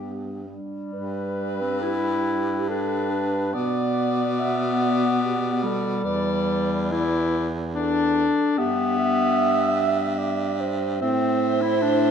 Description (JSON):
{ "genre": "classical, lyrical piece for single-reed quartet", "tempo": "61-75 BPM", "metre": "3/4", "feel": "rubato", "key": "G major", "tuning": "A4 = 440 Hz", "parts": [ { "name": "warm soprano saxophone", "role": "melody", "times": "0.0-12.1 s", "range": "G4 to E5", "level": "-32 LUFS", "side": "left 6 dB", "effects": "none" }, { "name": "mellow alto saxophone", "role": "second line", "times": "0.0-12.1 s", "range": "B3 to E5", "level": "-27 LUFS", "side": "right 8 dB", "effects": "none" }, { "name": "warm clarinet", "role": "accompaniment", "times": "0.0-12.1 s", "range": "G3 to E4", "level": "-24 LUFS", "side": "left 3 dB", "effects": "none" }, { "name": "clear baritone saxophone", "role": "bass", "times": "0.0-12.1 s", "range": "E2 to B2", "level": "-28 LUFS", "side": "right 2 dB", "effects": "none" } ], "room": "wet recital hall reverb, RT60 1.4 s", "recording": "none", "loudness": "-21 LUFS", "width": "side -7 dB against mid", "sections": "0.9-12.1 A section", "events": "none", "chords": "0.0 G; 3.6 Bm; 6.0 Em7; 8.6 Em/G; 11.0 Am" }